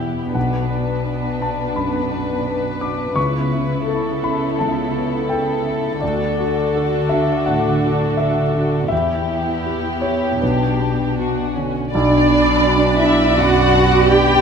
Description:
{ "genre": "cinematic, emotional film score for orchestra", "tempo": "77-86 BPM", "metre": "4/4", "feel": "rubato", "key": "B minor", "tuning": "A4 = 442 Hz", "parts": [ { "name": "warm studio violin section", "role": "melody", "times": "0.0-14.4 s", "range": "F#4 to D5", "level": "-24 LUFS", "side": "left 4 dB", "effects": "none" }, { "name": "dark studio violin section", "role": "second line", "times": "0.0-14.4 s", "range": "C#4 to G5", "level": "-24 LUFS", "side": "left 1 dB", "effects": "none" }, { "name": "dark studio viola section", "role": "accompaniment", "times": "0.0-14.4 s", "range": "B3 to D4", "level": "-26 LUFS", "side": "right 2 dB", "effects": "none" }, { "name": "warm concert grand piano", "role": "accompaniment", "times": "0.0-14.4 s", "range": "B1 to D6", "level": "-21 LUFS", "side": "left 2 dB", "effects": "none" }, { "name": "dark studio cello section", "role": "bass", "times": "0.0-14.4 s", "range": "E2 to G4", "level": "-22 LUFS", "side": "right 3 dB", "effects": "none" }, { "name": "dark cor anglais", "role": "second line", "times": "11.9-14.4 s", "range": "D5", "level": "-25 LUFS", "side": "right 6 dB", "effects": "none" }, { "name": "mellow flute section", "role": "second line", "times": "11.9-14.4 s", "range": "B5", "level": "-24 LUFS", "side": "left 1 dB", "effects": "none" }, { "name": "clear chamber double bass section", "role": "bass", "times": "11.9-14.4 s", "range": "B1", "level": "-21 LUFS", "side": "right 4 dB", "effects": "none" } ], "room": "moderate scoring stage reverb, RT60 1.6 s", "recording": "none", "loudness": "-16 LUFS", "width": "side -6 dB against mid", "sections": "0.0-11.9 A section; 11.9-14.4 A section", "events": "none", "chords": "0.4 Bm; 3.2 Aadd9/C#; 6.0 D; 8.9 Em; 10.4 Bm" }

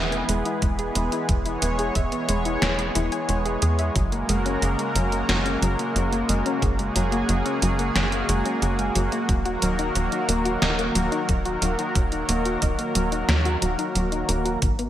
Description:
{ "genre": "synthwave", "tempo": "90 BPM", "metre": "4/4", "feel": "straight", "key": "unclear", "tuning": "A4 = 437 Hz", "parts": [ { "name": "lush unison pad", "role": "sustained chords", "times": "0.0-14.9 s", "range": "C#3 to C#5", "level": "-26 LUFS", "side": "equal", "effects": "chorus, sidechain pumping" }, { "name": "soft round pluck", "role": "arpeggios", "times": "0.0-14.9 s", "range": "F#3 to G#5", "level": "-28 LUFS", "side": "left 1 dB", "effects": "chorus, digital delay" }, { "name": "tight sequencer bass", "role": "bass", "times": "0.0-14.9 s", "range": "D#1 to E2", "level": "-26 LUFS", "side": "equal", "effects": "none" }, { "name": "detuned 8-bit digital drum machine", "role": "drums", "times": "0.1-14.9 s", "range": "hi-hat, snare drum", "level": "-26 LUFS", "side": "right 1 dB", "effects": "gated reverb" }, { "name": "electronic kick drum", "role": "drums", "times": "0.6-14.8 s", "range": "none", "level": "-24 LUFS", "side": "equal", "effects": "none" }, { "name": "riser", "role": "sound effects", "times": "14.9 s", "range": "none", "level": "-48 LUFS", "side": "left 2 dB", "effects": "none" } ], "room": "moderate plate reverb, RT60 2.0 s", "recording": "bright 1980s-style digital production", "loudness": "-21 LUFS", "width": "side -12 dB against mid", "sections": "0.0-14.6 A section", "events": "kick drops out 14.0-14.6", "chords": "0.0 E; 4.0 F#add9; 9.3 D#m" }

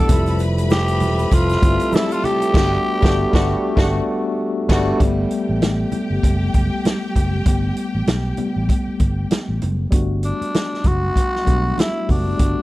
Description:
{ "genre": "lush 1970s-style soul", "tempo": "98 BPM", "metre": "4/4", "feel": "swing 58% on 16ths", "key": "G major", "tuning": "A4 = 439 Hz", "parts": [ { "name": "growling tenor saxophone", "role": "melody", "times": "0.0-4.1, 10.2-12.6 s", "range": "D4 to A4", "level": "-22 LUFS", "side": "equal", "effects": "none" }, { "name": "clear studio string section", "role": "second line", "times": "0.0-9.6 s", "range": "F#4 to B5", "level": "-31 LUFS", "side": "equal", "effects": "none" }, { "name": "tine electric piano", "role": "accompaniment", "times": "0.0-12.6 s", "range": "G3 to F#5", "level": "-22 LUFS", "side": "left 2 dB", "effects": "medium stereo tremolo" }, { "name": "mellow French horn section", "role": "sustained chords", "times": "0.0-5.0 s", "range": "C3 to E5", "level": "-29 LUFS", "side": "right 1 dB", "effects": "none" }, { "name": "fingered electric bass", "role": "bass", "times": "0.0-12.5 s", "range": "E1 to B1", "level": "-21 LUFS", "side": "equal", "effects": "none" }, { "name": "vintage drum kit", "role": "drums", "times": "0.1-12.6 s", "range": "crash cymbal, hi-hat, kick drum, snare drum", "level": "-18 LUFS", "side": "equal", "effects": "none" }, { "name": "congas", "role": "percussion", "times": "0.1-12.6 s", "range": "none", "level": "-31 LUFS", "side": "right 3 dB", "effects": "none" }, { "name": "tube shaker", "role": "percussion", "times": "0.1-2.5 s", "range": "none", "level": "-46 LUFS", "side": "left 10 dB", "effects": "none" } ], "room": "studio reverb", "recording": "dry, close 1970s-style studio recording", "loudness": "-16 LUFS", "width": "side -18 dB against mid", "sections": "0.0-5.0 A section; 5.0-9.9 B section; 9.9-12.6 C section", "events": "band accent 2.5-5.0; tine electric piano solo 5.0-9.9", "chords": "0.1 Fmaj7; 2.5 Gmaj9" }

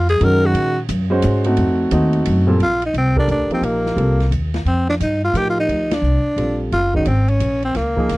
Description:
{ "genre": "modal jazz", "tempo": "175 BPM", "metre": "3/4", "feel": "swing 64% on 8ths", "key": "Bb major", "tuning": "A4 = 440 Hz", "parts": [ { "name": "growling tenor saxophone", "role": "melody", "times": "0.0-8.2 s", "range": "Bb3 to Bb4", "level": "-19 LUFS", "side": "equal", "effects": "none" }, { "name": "upright bass", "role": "bass", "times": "0.0-8.2 s", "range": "Gb1 to Bb2", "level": "-18 LUFS", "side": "equal", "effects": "none" }, { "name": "open jazz drum kit", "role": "drums", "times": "0.1-8.2 s", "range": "hi-hat, kick drum, ride cymbal, snare drum", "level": "-30 LUFS", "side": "equal", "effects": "none" }, { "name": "warm grand piano", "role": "accompaniment", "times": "0.2-8.1 s", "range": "Bb2 to C5", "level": "-20 LUFS", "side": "right 1 dB", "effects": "none" } ], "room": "little or no reverb", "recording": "dry, close 1970s-style studio recording", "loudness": "-15 LUFS", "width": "side -20 dB against mid", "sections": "0.0-2.6 A section; 2.6-8.2 B section", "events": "tenor saxophone solo 0.0-2.6; band accent 5.9", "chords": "0.0 Gbmaj9; 1.6 F7b9; 2.6 Bbmaj9; 6.7 Gbadd9" }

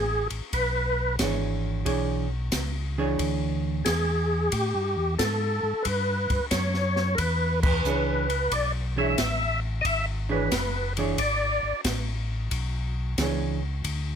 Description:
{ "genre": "soul jazz organ trio", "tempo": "90 BPM", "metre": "4/4", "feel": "swing 68% on 8ths", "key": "E mixolydian", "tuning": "A4 = 440 Hz", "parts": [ { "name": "percussive tonewheel organ", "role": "melody", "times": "0.0-11.8 s", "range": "G4 to E5", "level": "-26 LUFS", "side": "equal", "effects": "slow rotary speaker, overdrive, chorus vibrato" }, { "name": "mellow tonewheel organ", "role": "bass", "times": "0.0-14.2 s", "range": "F#1 to A2", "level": "-28 LUFS", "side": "equal", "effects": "overdrive, chorus vibrato, slow rotary speaker" }, { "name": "open jazz drum kit", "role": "drums", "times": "0.3-14.1 s", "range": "crash cymbal, hi-hat, kick drum, ride cymbal, snare drum", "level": "-31 LUFS", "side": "left 1 dB", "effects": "none" }, { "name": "vintage hollow-body jazz guitar", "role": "accompaniment", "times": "1.2-3.8, 7.9-13.6 s", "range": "E3 to C#5", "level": "-28 LUFS", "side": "right 4 dB", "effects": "none" } ], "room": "little or no reverb", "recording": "close, detailed microphones", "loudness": "-24 LUFS", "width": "side -8 dB against mid", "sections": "0.0-14.2 A section", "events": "band accent 7.5-7.8", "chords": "0.0 E13; 4.5 Asus2; 7.2 E13" }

